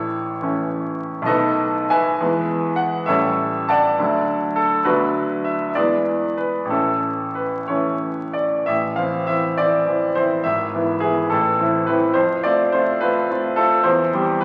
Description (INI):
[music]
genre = classical, romantic character piece for solo piano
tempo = 60-74 BPM (dotted quarters)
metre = 6/8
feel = rubato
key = A major, A minor from 8.7 s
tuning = A4 = 442 Hz
[part]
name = bright grand piano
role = solo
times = 0.0-14.4 s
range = G#1 to A5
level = -20 LUFS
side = equal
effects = none
[sound]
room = wet recital hall reverb, RT60 1.5 s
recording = very old 78 rpm record, vinyl crackle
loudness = -20 LUFS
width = mono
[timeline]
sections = 0.0-8.7 A section; 8.7-14.4 B section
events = none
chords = 0.0 A; 1.3 B7; 2.2 E; 3.1 A7; 4.0 D; 4.9 Bm/D; 5.7 E7; 6.7 A; 8.7 Am; 10.4 E/G#; 11.3 Am; 12.2 F; 13.8 C/E